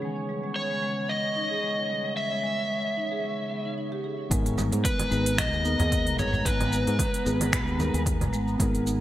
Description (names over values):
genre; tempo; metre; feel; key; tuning
organic downtempo; 112 BPM; 4/4; swing 54% on 16ths; G# minor; A4 = 440 Hz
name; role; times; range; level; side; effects
muted felt-like synth keys; accompaniment; 0.0-9.0 s; D#3 to G#5; -34 LUFS; left 2 dB; chorus, sidechain pumping
warbly tape-like pad; sustained chords; 0.0-9.0 s; C#3 to A#5; -36 LUFS; right 2 dB; chorus, built-in reverb, sidechain pumping
marimba with soft mallets; arpeggios; 0.0-9.0 s; G3 to G#4; -33 LUFS; equal; digital delay
drifting glass-harmonics texture; texture; 0.0-4.3 s; B3; -46 LUFS; equal; chorus, built-in reverb
overdriven slide guitar; melody; 0.6-8.0 s; B4 to E5; -30 LUFS; equal; digital delay
sustaining fretless electric bass; bass; 4.3-9.0 s; G#1 to G#2; -28 LUFS; equal; wide subtle chorus
electronic kick drum; drums; 4.3-8.7 s; none; -29 LUFS; equal; overdrive, small room ambience
organic electronic drum kit; drums; 4.3-9.0 s; congas, finger snaps, hi-hat, shaker; -31 LUFS; right 2 dB; small room ambience, gated reverb
udu; percussion; 5.8-8.3 s; none; -32 LUFS; equal; none
room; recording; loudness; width
light reverb; bright 1980s-style digital production; -24 LUFS; side -13 dB against mid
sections
0.0-4.3 A section; 4.3-9.0 B section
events
none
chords
0.0 C#madd9; 4.3 G#madd9